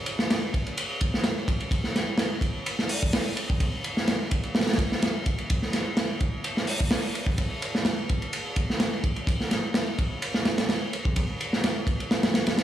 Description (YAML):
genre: breakbeat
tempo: 127 BPM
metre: 4/4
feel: swing 54% on 16ths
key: none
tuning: none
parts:
  - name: crunchy breakbeat drum kit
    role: drums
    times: 0.1-12.6 s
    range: hi-hat, kick drum, ride cymbal, snare drum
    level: -24 LUFS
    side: equal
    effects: none
room: light reverb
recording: small room reverb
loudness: -24 LUFS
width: side -12 dB against mid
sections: 0.0-12.6 A section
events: none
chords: none